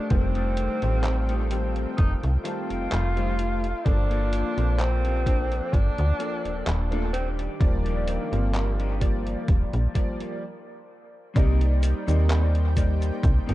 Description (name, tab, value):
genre	vaporwave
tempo	64 BPM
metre	4/4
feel	swing 53% on 16ths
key	unclear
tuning	A4 = 440 Hz
part	warm tenor saxophone	melody	0.0-9.4 s	Bb3 to F4	-32 LUFS	equal	tape echo
part	lush unison pad	sustained chords	0.0-13.5 s	Eb3 to G5	-40 LUFS	equal	chorus
part	electric guitar at the edge of break-up	riff	0.0-13.5 s	A3 to A5	-36 LUFS	left 2 dB	analog chorus, vintage 12-bit sampler grit, low-pass filter, dub echo
part	bright electric grand piano	accompaniment	0.1-13.5 s	Eb3 to D5	-32 LUFS	left 2 dB	analog chorus, vintage 12-bit sampler grit, dub echo
part	slap-like FM bass	bass	0.1-13.5 s	Eb1 to Eb2	-24 LUFS	equal	tube saturation
part	detuned 8-bit digital drum machine	drums	0.1-13.5 s	cabasa, handclaps, hi-hat	-36 LUFS	equal	dub echo
part	electronic kick drum	drums	0.1-13.4 s	none	-23 LUFS	equal	none
room	little or no reverb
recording	echo-heavy mix, nothing above 10.3 kHz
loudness	-22 LUFS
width	side -16 dB against mid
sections	0.0-11.4 A section; 11.4-13.5 B section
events	filter sweep on clean electric guitar 0.0-11.4; clean electric guitar fill 2.0-3.9; stop 10.4-11.4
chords	0.0 F9; 3.9 Ebmaj7; 11.4 Cm7